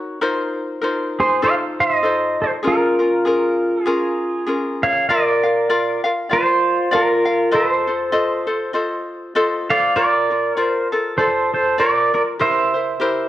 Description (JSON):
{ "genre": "Hawaiian", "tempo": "99 BPM", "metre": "4/4", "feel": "swing 57% on 8ths", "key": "Bb minor, Bb major from 5.1 s", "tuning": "A4 = 439 Hz", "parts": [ { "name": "ukulele", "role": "accompaniment", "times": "0.0-13.3 s", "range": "Db4 to F5", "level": "-21 LUFS", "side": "left 2 dB", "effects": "none" }, { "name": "pedal steel guitar", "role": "melody", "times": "1.2-13.3 s", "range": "F4 to F5", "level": "-17 LUFS", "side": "right 1 dB", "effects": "slapback echo" } ], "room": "moderate scoring stage reverb, RT60 1.7 s, small room ambience", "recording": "worn, warbling old tape, cassette tape, warbly pitch drift", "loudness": "-16 LUFS", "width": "side -13 dB against mid", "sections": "0.0-5.1 A section; 5.1-13.3 B section", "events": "none", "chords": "0.2 F7sus4; 1.4 F7; 2.6 Bbm7; 5.1 Bb; 7.5 F7; 9.9 Bbmaj7; 12.4 C7" }